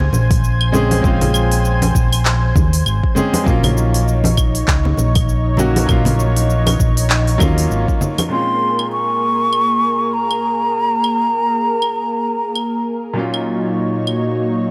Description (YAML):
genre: sunset chillout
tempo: 99 BPM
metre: 4/4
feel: swing 58% on 16ths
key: Bb minor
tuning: A4 = 440 Hz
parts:
  - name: clear grand piano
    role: accompaniment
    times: 0.0-14.7 s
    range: Bb2 to Ab4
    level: -24 LUFS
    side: equal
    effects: analog delay
  - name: lush unison pad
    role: sustained chords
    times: 0.0-14.7 s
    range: Bb2 to Ab5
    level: -25 LUFS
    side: equal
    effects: chorus
  - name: hollow-body short-scale fingered electric bass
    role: bass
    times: 0.0-7.8 s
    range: Ab1 to Eb2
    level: -18 LUFS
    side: equal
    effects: none
  - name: congas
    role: percussion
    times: 0.0-8.3 s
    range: none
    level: -24 LUFS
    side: equal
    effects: none
  - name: deep house drum kit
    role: drums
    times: 0.1-14.2 s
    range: cabasa, claves, handclaps, hi-hat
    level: -24 LUFS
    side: equal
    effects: studio reverb
  - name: electronic kick drum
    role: drums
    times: 0.3-8.0 s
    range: none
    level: -20 LUFS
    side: equal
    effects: studio reverb
  - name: mellow hollow silver concert flute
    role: melody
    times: 8.3-12.9 s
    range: Bb5 to Db6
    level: -19 LUFS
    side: equal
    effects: analog delay
room: light reverb, small room ambience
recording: dry, gritty hardware recording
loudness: -16 LUFS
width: mono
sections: 0.0-8.3 A section; 8.3-14.7 B section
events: none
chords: 0.0 Bbm9; 3.5 Ebm7/Bb; 8.3 Bbm9; 13.2 Ebm7/Bb